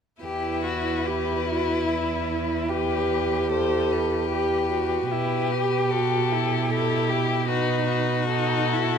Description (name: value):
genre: classical, slow romantic movement for string quartet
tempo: 75 BPM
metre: 3/4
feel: rubato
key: E minor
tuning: A4 = 440 Hz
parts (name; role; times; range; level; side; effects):
- warm violin; melody; 0.2-9.0 s; G4 to C5; -29 LUFS; left 11 dB; none
- warm violin; second line; 0.2-9.0 s; E4 to A4; -28 LUFS; left 4 dB; none
- warm viola; accompaniment; 0.2-9.0 s; D#4 to G4; -27 LUFS; right 2 dB; none
- rich cello; bass; 0.2-9.0 s; E2 to B2; -27 LUFS; right 5 dB; none
room: moderate recital hall reverb, RT60 1.5 s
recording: close, detailed microphones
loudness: -22 LUFS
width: side -7 dB against mid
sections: 0.2-9.0 A section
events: none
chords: 0.2 Em; 5.1 Em/B; 7.5 B7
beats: | 0.23 1.07 1.89 | 2.70 3.51 4.31 | 5.11 5.91 6.71 | 7.49 8.30